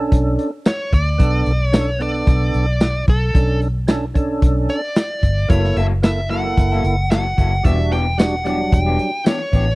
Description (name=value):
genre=straight-eighth soul blues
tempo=112 BPM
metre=4/4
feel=swing 54% on 16ths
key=B minor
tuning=A4 = 443 Hz
part: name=percussive tonewheel organ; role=accompaniment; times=0.0-9.1 s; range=F#3 to A4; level=-22 LUFS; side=right 2 dB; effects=chorus vibrato, slow rotary speaker
part: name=vintage muted fingered electric bass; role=bass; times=0.0-9.8 s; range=E1 to D2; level=-19 LUFS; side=equal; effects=none
part: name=crunchy breakbeat drum kit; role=drums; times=0.1-9.7 s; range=hi-hat, kick drum, snare drum, tambourine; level=-16 LUFS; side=equal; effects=none
part: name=dark smooth lead guitar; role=melody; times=0.7-9.8 s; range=A4 to G5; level=-23 LUFS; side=equal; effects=overdrive
part: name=electric guitar through a small old amp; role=stabs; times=5.5-9.7 s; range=E3 to A4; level=-26 LUFS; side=left 4 dB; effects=none
room=studio reverb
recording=dry, close 1970s-style studio recording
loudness=-15 LUFS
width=side -21 dB against mid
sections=0.0-9.8 A section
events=none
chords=0.0 Bm7; 5.5 F#7#9; 7.6 Em7